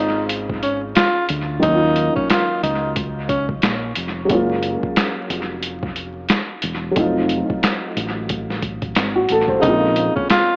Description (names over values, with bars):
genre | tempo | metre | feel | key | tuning
hip hop, boom-bap hip-hop | 90 BPM | 4/4 | swing 59% on 16ths | Bb minor | A4 = 442 Hz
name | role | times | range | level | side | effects
breathy tenor saxophone | melody | 0.0-3.5, 9.6-10.6 s | Db4 to F4 | -22 LUFS | equal | high-pass filter, low-pass filter, dub echo
dark upright piano | accompaniment | 0.0-10.6 s | Db3 to C5 | -24 LUFS | equal | cassette tape, high-pass filter, low-pass filter, dub echo
deep dub fingered electric bass | bass | 0.0-10.1 s | E1 to Eb2 | -28 LUFS | equal | none
boom bap sampler-style drum kit | drums | 0.3-10.5 s | handclaps, hi-hat, kick drum, snare drum | -24 LUFS | equal | dub echo
room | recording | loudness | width
light reverb | echo-heavy mix, vinyl crackle, AM radio sound | -20 LUFS | mono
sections
0.0-10.6 A section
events
none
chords
0.0 Bbm7; 1.6 Ebm7; 4.3 Gbmaj7; 7.0 F7b9; 9.6 Bbm7